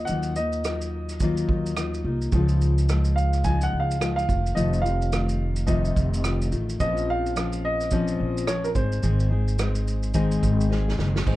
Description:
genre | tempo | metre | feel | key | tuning
acoustic pop | 107 BPM | 4/4 | swing 60% on 16ths | unclear | A4 = 440 Hz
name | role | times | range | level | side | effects
warm upright piano | melody | 0.0-10.7 s | Bb4 to Ab5 | -29 LUFS | right 1 dB | none
fingerpicked steel-string acoustic guitar | accompaniment | 0.0-11.4 s | F2 to Ab4 | -27 LUFS | left 3 dB | none
upright bass | bass | 0.0-11.4 s | F1 to Eb2 | -25 LUFS | equal | none
unplugged drum kit | drums | 0.1-11.4 s | crash cymbal, kick drum, rim click, shaker, snare drum | -29 LUFS | right 2 dB | none
room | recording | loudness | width
little or no reverb | dark, warm production | -21 LUFS | side -16 dB against mid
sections
0.0-11.3 A section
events
drum fill 10.7-11.3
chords
0.0 Ebmadd9; 2.3 Dbadd9; 4.3 F7; 6.8 Bbmadd9; 8.8 Ab

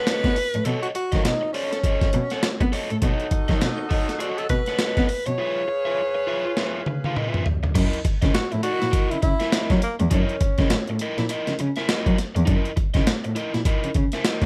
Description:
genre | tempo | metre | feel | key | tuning
funk | 102 BPM | 4/4 | swing 60% on 16ths | unclear | A4 = 440 Hz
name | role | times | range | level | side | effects
breathy tenor saxophone | melody | 0.0-11.0 s | A#3 to C#5 | -29 LUFS | equal | none
crunchy overdriven guitar | accompaniment | 0.0-14.5 s | E4 to F#5 | -32 LUFS | equal | none
breakbeat sampler-style drum kit | drums | 0.1-14.5 s | crash cymbal, hi-hat, kick drum, snare drum, toms | -25 LUFS | equal | none
dark cello | bass | 0.2-14.5 s | E2 to B3 | -27 LUFS | equal | none
warm horn section | second line | 3.0-7.4 s | F#4 to E#5 | -36 LUFS | equal | none
room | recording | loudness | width
light reverb | none | -23 LUFS | mono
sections
0.0-7.7 A section; 7.7-14.5 B section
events
drum fill 6.6-7.7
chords
0.0 B9; 5.4 C#7#9; 7.7 F#13 (rootless)

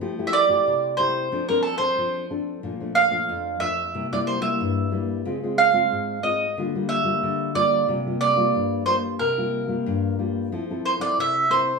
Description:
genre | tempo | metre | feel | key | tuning
samba | 91 BPM | 4/4 | straight | F major | A4 = 440 Hz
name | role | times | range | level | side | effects
nylon-string guitar | accompaniment | 0.0-11.8 s | F2 to A4 | -26 LUFS | left 3 dB | none
mandolin | melody | 0.3-11.8 s | A4 to F5 | -21 LUFS | right 3 dB | none
room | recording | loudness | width
wet studio reverb, RT60 0.7 s | band playing live in one room, studio reverb | -20 LUFS | side -4 dB against mid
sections
0.0-11.8 A section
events
none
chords
0.0 Fmaj9; 1.3 Dm7/F; 2.6 Bbmaj7; 3.9 C7; 5.3 Dbmaj7; 6.6 Gm7/D; 7.9 C7sus4; 10.5 Fmaj7

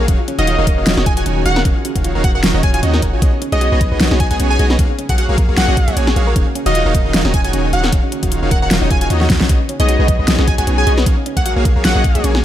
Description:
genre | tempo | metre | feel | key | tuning
future bass | 153 BPM | 4/4 | swing 55% on 16ths, half-time | Eb minor | A4 = 440 Hz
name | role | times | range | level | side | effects
airy breathy pad | sustained chords | 0.0-12.4 s | Eb3 to Ab4 | -28 LUFS | right 1 dB | none
soft round pluck | arpeggios | 0.0-12.4 s | Db4 to Db5 | -24 LUFS | left 2 dB | chorus, sidechain pumping, tape echo
big bright polysynth | riff | 0.0-12.4 s | Eb3 to Ab5 | -21 LUFS | right 1 dB | vintage 12-bit sampler grit, sidechain pumping
long sustained 808-style bass | bass | 0.0-12.4 s | Eb1 to Eb2 | -17 LUFS | equal | sidechain pumping
dubstep drum kit | drums | 0.1-12.4 s | hi-hat, snare drum | -18 LUFS | equal | overdrive
electronic kick drum | drums | 0.1-12.1 s | none | -16 LUFS | equal | overdrive
plucky unison lead | melody | 0.4-12.2 s | Eb5 to Ab5 | -22 LUFS | right 1 dB | sidechain pumping, ping-pong delay
room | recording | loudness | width
digital ambience | none | -12 LUFS | side -12 dB against mid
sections
0.0-12.4 A section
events
drum fill 9.2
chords
0.1 Ebm9; 3.2 B69; 4.8 Gbmaj9/Bb; 6.4 Ebm9; 9.5 B69; 11.1 Gbmaj9/Bb

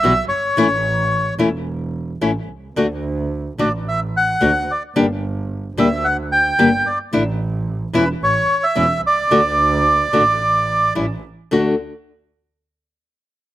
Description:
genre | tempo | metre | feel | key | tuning
tango | 110 BPM | 4/4 | rubato | D major | A4 = 444 Hz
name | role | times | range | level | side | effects
bandoneon | melody | 0.0-10.9 s | B4 to G5 | -16 LUFS | right 1 dB | slapback echo
nylon-string guitar | accompaniment | 0.0-11.7 s | B2 to G4 | -17 LUFS | left 2 dB | slapback echo
warm double bass | bass | 0.0-11.7 s | E1 to D2 | -24 LUFS | right 2 dB | none
room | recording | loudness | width
little or no reverb | recorded outdoors, with no room sound | -16 LUFS | side -14 dB against mid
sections
0.0-11.5 A section; 11.5-13.5 B section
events
none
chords
0.0 Emadd9/B; 0.6 A; 2.8 D; 5.0 Gm; 7.1 Asus4; 8.2 A; 9.3 D5; 11.0 A7; 11.5 D

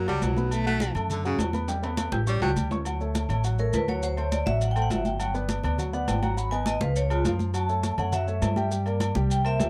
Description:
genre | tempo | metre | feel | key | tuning
Afro-Cuban jazz | 205 BPM | 4/4 | straight | D major | A4 = 440 Hz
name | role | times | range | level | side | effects
warm baritone saxophone | second line | 0.0-2.5 s | C#3 to A3 | -31 LUFS | equal | none
dark concert grand piano | accompaniment | 0.0-9.7 s | F3 to G6 | -35 LUFS | equal | none
upright bass | bass | 0.0-9.7 s | G1 to G2 | -30 LUFS | equal | none
agogo bells and timbales | percussion | 0.1-9.7 s | none | -36 LUFS | equal | none
congas | percussion | 0.1-9.7 s | none | -35 LUFS | equal | none
maracas | percussion | 0.1-9.7 s | none | -44 LUFS | equal | none
vibraphone with medium hard mallets | melody | 3.6-9.7 s | E#4 to B5 | -32 LUFS | equal | slapback echo
room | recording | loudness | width
moderate club reverb, RT60 0.5 s | dark, warm production | -26 LUFS | mono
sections
0.0-2.9 A section; 2.9-9.7 A section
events
baritone saxophone solo 0.0-2.9; drum fill 1.7-2.9; vibraphone solo 2.9-9.7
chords
0.0 F#5; 0.5 B5; 1.7 Em; 2.3 A7; 2.9 Dmaj7; 4.0 D7; 5.2 Gmaj7; 6.4 G#m7; 7.0 C#7; 7.5 F#m7; 8.7 C9

